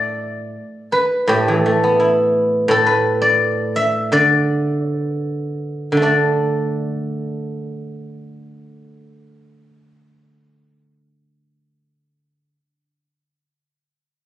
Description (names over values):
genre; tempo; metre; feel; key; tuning
chinese traditional; 53-87 BPM; 2/4; rubato; D zhi mode; A4 = 440 Hz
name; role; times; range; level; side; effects
guzheng; solo; 0.0-12.6 s; A2 to G5; -16 LUFS; equal; none
room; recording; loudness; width
moderate recital hall reverb, RT60 1.6 s; recorded on a phone in the room, studio reverb, compression; -15 LUFS; side -13 dB against mid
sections
0.0-6.0 A section; 6.0-10.4 B section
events
slowing down 2.7-6.0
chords
none